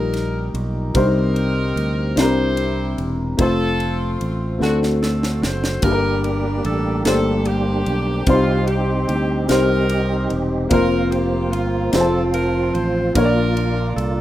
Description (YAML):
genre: slow gospel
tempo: 49 BPM (dotted quarters)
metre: 6/8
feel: straight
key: unclear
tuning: A4 = 440 Hz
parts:
  - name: bright saxophone section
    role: melody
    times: 0.0-14.2 s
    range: A3 to C5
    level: -26 LUFS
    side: left 1 dB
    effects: plate reverb
  - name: dark upright piano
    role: accompaniment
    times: 0.0-14.2 s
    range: G2 to A5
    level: -20 LUFS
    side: left 2 dB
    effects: plate reverb
  - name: fingered electric bass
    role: bass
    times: 0.0-14.2 s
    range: E1 to D2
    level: -22 LUFS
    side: right 1 dB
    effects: none
  - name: crisp fusion drum kit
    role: drums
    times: 0.1-14.2 s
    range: kick drum, ride cymbal, snare drum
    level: -23 LUFS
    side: right 1 dB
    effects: none
  - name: tonewheel organ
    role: sustained chords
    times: 5.8-14.2 s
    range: F3 to G4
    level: -24 LUFS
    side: right 3 dB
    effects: slow rotary speaker, chorus vibrato, plate reverb
room: moderate small room reverb, RT60 0.5 s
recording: rough home demo mix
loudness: -17 LUFS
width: side -13 dB against mid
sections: 0.0-14.2 A section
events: drum fill 4.6-5.8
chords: 0.0 Eb/Bb; 0.9 Cm; 2.2 C9; 3.4 F; 4.6 D7; 5.8 Gm; 8.3 Cm; 10.7 Fsus4; 11.9 F; 13.2 Bb